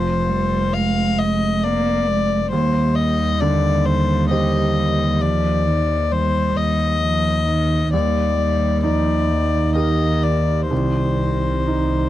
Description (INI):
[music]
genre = neoclassical piano and strings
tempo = 66 BPM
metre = 3/4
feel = rubato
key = C minor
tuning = A4 = 442 Hz
[part]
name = warm violin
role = melody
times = 0.0-12.1 s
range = C5 to F5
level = -22 LUFS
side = left 6 dB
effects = none
[part]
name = warm cello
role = second line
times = 0.0-12.1 s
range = Eb3 to Bb3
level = -23 LUFS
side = right 4 dB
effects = none
[part]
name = warm concert grand piano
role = accompaniment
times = 0.0-12.1 s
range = C2 to C5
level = -24 LUFS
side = right 2 dB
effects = none
[part]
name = rich double bass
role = bass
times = 0.0-12.1 s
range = F1 to Eb2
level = -21 LUFS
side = equal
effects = none
[sound]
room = light reverb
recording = dry, close 1970s-style studio recording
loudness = -16 LUFS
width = side -13 dB against mid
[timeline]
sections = 0.0-12.1 A section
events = none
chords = 0.0 Fm; 2.5 Cmadd9/Eb; 7.9 Ebmaj7; 10.7 Cm